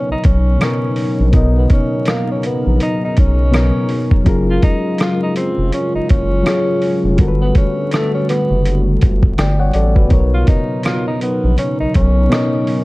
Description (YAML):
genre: lo-fi hip hop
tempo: 82 BPM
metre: 4/4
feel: swing 59% on 16ths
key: B lydian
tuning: A4 = 441 Hz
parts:
  - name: clear tenor saxophone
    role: melody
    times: 0.0-12.8 s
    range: A3 to E#4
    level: -22 LUFS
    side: equal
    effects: low-pass filter
  - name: barky reed electric piano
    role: accompaniment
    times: 0.0-12.8 s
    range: B2 to G5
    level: -19 LUFS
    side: left 2 dB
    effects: cassette tape, low-pass filter
  - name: dark analog pad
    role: sustained chords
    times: 0.0-12.8 s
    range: C#3 to A#4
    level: -22 LUFS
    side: right 1 dB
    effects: chorus, low-pass filter
  - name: round analog bass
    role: bass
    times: 0.1-12.3 s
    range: E#1 to B1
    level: -15 LUFS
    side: equal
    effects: none
  - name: dusty soul sampler-style drum kit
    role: drums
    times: 0.2-12.8 s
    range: hi-hat, kick drum, rim click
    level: -15 LUFS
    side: equal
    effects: overdrive
  - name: finger snap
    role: percussion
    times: 0.6-12.5 s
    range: none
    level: -37 LUFS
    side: right 3 dB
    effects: none
room: light reverb, digital ambience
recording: dark, warm production, vinyl crackle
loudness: -12 LUFS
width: side -21 dB against mid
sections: 0.0-12.8 A section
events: none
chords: 0.0 Bmaj9; 4.3 F#maj9; 7.2 Gmaj9; 10.1 Bmaj9